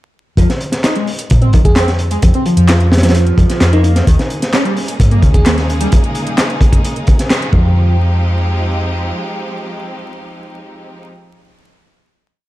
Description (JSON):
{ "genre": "breakbeat, breaks", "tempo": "130 BPM", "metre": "4/4", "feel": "straight", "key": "F minor", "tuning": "A4 = 440 Hz", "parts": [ { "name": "overdriven synth lead", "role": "riff", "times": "0.4-8.0 s", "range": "Db3 to Eb4", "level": "-19 LUFS", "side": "equal", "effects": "tube saturation, wide subtle chorus, digital delay" }, { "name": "hollow-body short-scale fingered electric bass", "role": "bass", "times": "0.4-9.1 s", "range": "Eb2 to Bb2", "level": "-13 LUFS", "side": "equal", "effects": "none" }, { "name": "crunchy breakbeat drum kit", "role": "drums", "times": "0.4-7.6 s", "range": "hi-hat, kick drum, snare drum", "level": "-13 LUFS", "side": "equal", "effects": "none" }, { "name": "house drum kit", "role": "drums", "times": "0.4-7.5 s", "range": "handclaps, hi-hat", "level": "-23 LUFS", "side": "equal", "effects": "overdrive" }, { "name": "bell-like FM electric piano", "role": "melody", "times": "1.6-5.5 s", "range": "Eb4 to Ab4", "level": "-22 LUFS", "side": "equal", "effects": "chorus, tremolo, small speaker sound, digital delay" }, { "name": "bright studio string section", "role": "sustained chords", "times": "4.1-11.1 s", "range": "Db3 to Ab4", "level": "-23 LUFS", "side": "equal", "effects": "sidechain pumping" } ], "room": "small room ambience", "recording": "dark, warm production, vinyl crackle", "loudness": "-10 LUFS", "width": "side -16 dB against mid", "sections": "0.4-7.8 drop; 7.8-11.5 final hit", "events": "drop 0.4-7.8; band accent 7.3", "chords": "0.4 N.C.; 4.1 Eb7sus4; 7.5 Fm9" }